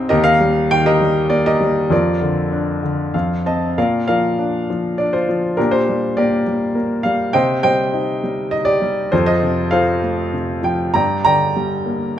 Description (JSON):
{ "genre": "classical, lyrical solo piano", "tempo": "100 BPM", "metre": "3/4", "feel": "rubato", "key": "Bb major", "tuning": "A4 = 440 Hz", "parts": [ { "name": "clear grand piano", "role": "solo", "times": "0.0-12.2 s", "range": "C2 to Bb5", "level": "-15 LUFS", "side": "equal", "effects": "none" } ], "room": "moderate recital hall reverb, RT60 1.8 s", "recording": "none", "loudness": "-15 LUFS", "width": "side -10 dB against mid", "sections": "0.0-3.8 A section; 3.8-12.2 B section", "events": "grand piano fill 2.8-3.8", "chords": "0.1 Eb; 1.9 Bb/F; 3.1 F; 3.8 Bb; 5.6 Gm/Bb; 7.3 Cm; 9.1 F; 11.0 Gm" }